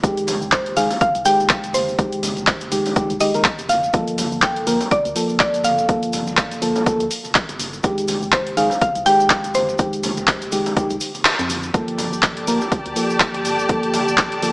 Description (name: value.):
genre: deep house.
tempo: 123 BPM.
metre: 4/4.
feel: swing 57% on 16ths.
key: unclear.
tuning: A4 = 440 Hz.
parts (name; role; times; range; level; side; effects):
mellow FM electric piano; stabs; 0.0-14.5 s; Eb3 to Bb4; -22 LUFS; equal; chorus, sidechain pumping, low-pass filter, digital delay.
organ-like FM bass; bass; 0.0-14.5 s; F1 to F2; -35 LUFS; equal; sidechain pumping.
electronic kick drum; drums; 0.0-14.3 s; none; -21 LUFS; equal; overdrive, studio ambience.
punchy analog drum machine; drums; 0.0-14.5 s; handclaps, hi-hat; -20 LUFS; equal; overdrive, studio ambience.
cabasa; percussion; 0.0-14.5 s; none; -31 LUFS; equal; none.
congas; percussion; 0.3-14.4 s; none; -32 LUFS; equal; sidechain pumping on perc.
mallet-like synth pluck; melody; 0.5-11.5 s; C5 to G5; -20 LUFS; equal; chorus, digital delay.
rich studio string section; texture; 11.7-14.5 s; G4 to A5; -22 LUFS; equal; sidechain pumping.
room: moderate echo chamber reverb, RT60 1.7 s.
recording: small speaker sound.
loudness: -16 LUFS.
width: side -25 dB against mid.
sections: 0.0-11.7 A section; 11.7-14.5 B section.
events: drop 0.0-11.7; kick drops out 11.3-11.7; band accent 11.3.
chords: 0.0 Fm9; 3.9 Gm9; 7.8 Fm9; 11.7 Gm9.